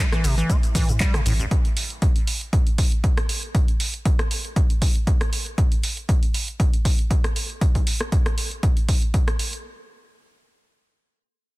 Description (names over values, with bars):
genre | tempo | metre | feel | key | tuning
acid house | 118 BPM | 4/4 | swing 54% on 16ths | A minor | A4 = 440 Hz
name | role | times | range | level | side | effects
dark analog pad | sustained chords | 0.0-1.5 s | A3 to E5 | -44 LUFS | right 5 dB | none
acid bass, square | riff | 0.0-1.5 s | A1 to A3 | -27 LUFS | equal | sidechain pumping, dub echo
punchy analog drum machine | drums | 0.1-9.6 s | cabasa, handclaps, hi-hat, rim click | -28 LUFS | right 1 dB | none
round analog bass | bass | 0.2-1.4 s | A1 to A2 | -23 LUFS | equal | sidechain pumping
electronic kick drum | drums | 0.5-9.2 s | none | -20 LUFS | equal | none
room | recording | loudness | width
digital ambience | dense, heavily limited modern master | -19 LUFS | side -21 dB against mid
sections
0.0-9.6 A section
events
none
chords
0.0 A5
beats
0.49 1.00 | 1.51 2.02 2.53 3.04 | 3.55 4.05 4.56 5.07 | 5.58 6.09 6.60 7.11 | 7.61 8.12 8.63 9.14